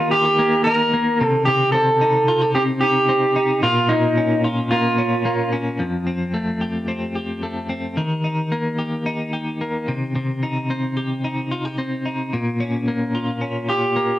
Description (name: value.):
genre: indie pop.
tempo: 110 BPM.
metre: 4/4.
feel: straight.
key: F mixolydian.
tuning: A4 = 444 Hz.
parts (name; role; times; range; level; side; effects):
electric guitar through a small old amp; melody; 0.0-5.5, 13.7-14.2 s; Eb4 to Bb4; -18 LUFS; right 1 dB; cassette tape.
twelve-string electric guitar; arpeggios; 0.0-14.2 s; F2 to G4; -21 LUFS; left 1 dB; tremolo, cassette tape.
room: moderate studio reverb, RT60 0.6 s.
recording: home recording on cassette.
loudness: -18 LUFS.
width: side -14 dB against mid.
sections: 0.0-5.8 A section; 5.8-14.2 B section.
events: none.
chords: 0.0 Eb; 1.2 Cm; 3.6 Bbm; 5.8 Fadd9; 8.0 Eb; 9.9 Cm; 12.3 Bbm.